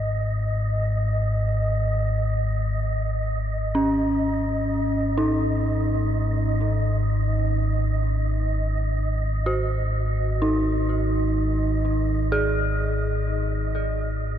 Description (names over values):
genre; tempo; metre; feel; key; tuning
dark ambient drone; free time; none; none; unclear; A4 = 442 Hz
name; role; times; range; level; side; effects
dark detuned synth bell; arpeggios; 0.0-14.4 s; C#4 to G#4; -26 LUFS; right 1 dB; chorus, tape echo
deep rumbling drone; drone; 0.0-14.4 s; G#1 to G#2; -24 LUFS; equal; built-in reverb
wind-like tuned noise texture; texture; 0.0-14.4 s; D#5; -31 LUFS; right 2 dB; built-in reverb
room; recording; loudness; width
moderate huge ambient reverb, RT60 8.6 s; dark, warm production; -21 LUFS; side -10 dB against mid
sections
0.0-14.4 A section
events
none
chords
0.0 G#7sus4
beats
free time